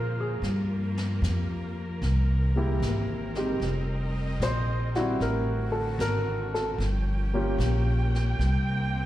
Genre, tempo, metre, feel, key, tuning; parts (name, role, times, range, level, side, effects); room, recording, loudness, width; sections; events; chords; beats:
jazz ballad; 75 BPM; 4/4; swing 68% on 8ths; F minor; A4 = 440 Hz
warm baby grand piano; accompaniment; 0.0-8.4 s; G3 to C5; -30 LUFS; equal; slapback echo
warm symphonic string section; sustained chords; 0.0-9.1 s; C3 to G5; -36 LUFS; right 1 dB
upright bass; bass; 0.0-9.1 s; F1 to Bb2; -26 LUFS; equal
jazz brush drum kit; drums; 0.4-9.1 s; brushed snare drum, hi-hat, snare drum; -41 LUFS; left 2 dB; slapback echo
small room ambience; live gig heard through the venue's PA, recital hall reverb; -25 LUFS; side -14 dB against mid
0.0-9.1 A section
0.4 Fsus24; 2.0 C7b13; 3.6 Fsus2; 5.2 D7; 6.8 Gm7b5; 8.4 Fsus2 (rootless)
| 0.42 1.22 2.02 2.81 | 3.61 4.41 5.20 6.00 | 6.80 7.59 8.39